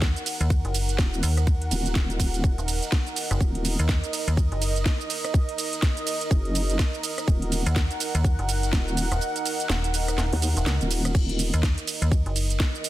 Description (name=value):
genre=bass house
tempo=124 BPM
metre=4/4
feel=swing 60% on 16ths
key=Eb minor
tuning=A4 = 440 Hz
part: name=dark analog pad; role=sustained chords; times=0.0-12.9 s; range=Eb4 to Gb5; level=-32 LUFS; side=right 2 dB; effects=chorus, sidechain pumping
part: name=metallic FM bass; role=bass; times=0.0-12.6 s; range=Eb1 to Eb2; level=-24 LUFS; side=equal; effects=sidechain pumping
part: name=electronic kick drum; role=drums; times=0.0-12.7 s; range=none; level=-22 LUFS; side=equal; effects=none
part: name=garage drum kit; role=drums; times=0.0-12.9 s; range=crash cymbal, hi-hat, ride cymbal, rim click, shaker, snare drum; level=-29 LUFS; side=right 2 dB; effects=none
part: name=vowel-sweep wobble bass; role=bass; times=1.0-11.5 s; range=Eb1 to Eb2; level=-26 LUFS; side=equal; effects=chorus, tube saturation, sidechain pumping
room=little or no reverb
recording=dense, heavily limited modern master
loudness=-22 LUFS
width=side -15 dB against mid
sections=0.0-12.9 A section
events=kick drops out 9.2-11.1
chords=0.0 Eb5